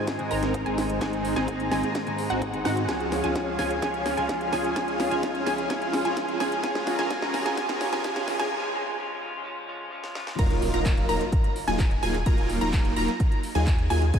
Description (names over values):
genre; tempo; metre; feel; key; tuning
EDM, festival progressive house; 128 BPM; 4/4; straight; unclear; A4 = 440 Hz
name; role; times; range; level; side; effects
electric guitar at the edge of break-up; accompaniment; 0.0-10.4 s; Ab2 to Ab4; -33 LUFS; left 2 dB; lush chorus, sidechain pumping, diffuse ambient delay
lush unison pad; sustained chords; 0.0-8.5 s; Db4 to Bb5; -33 LUFS; equal; chorus, sidechain pumping
riser and impact; sound effects; 0.0-12.3 s; none; -37 LUFS; right 2 dB; none
electronic kick drum; drums; 0.1-14.2 s; none; -24 LUFS; equal; high-pass filter on kick
house drum kit; drums; 0.1-14.2 s; crash cymbal, handclaps, hi-hat, snare drum; -34 LUFS; equal; none
wide unison pluck; arpeggios; 0.3-14.2 s; Gb5 to Bb5; -31 LUFS; right 1 dB; lush chorus, sidechain pumping, diffuse ambient delay
supersaw chords; riff; 0.3-14.2 s; Gb3 to Bb4; -29 LUFS; right 1 dB; phaser, sidechain pumping, low-pass filter, diffuse ambient delay
saturated sub bass; bass; 0.3-14.2 s; Eb1 to Ab2; -31 LUFS; equal; sidechain pumping
room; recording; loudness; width
wet huge ambient reverb, RT60 3.8 s; dreamy mix soaked in reverb, high-pass filter; -23 LUFS; side -8 dB against mid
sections
0.0-10.4 A section; 10.4-14.2 B section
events
build-up 0.0-10.4; drum fill 0.0-8.5, 10.0-10.4; filter sweep on supersaw synth 0.0-10.4; filter sweep on analog synth pad 0.0-10.4; filter sweep 0.0-10.4; break 8.5-10.4; drop 10.4-14.2; impact 10.4-12.3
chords
0.0 Ab; 2.9 Db; 6.6 Bbm; 10.4 Ebmadd9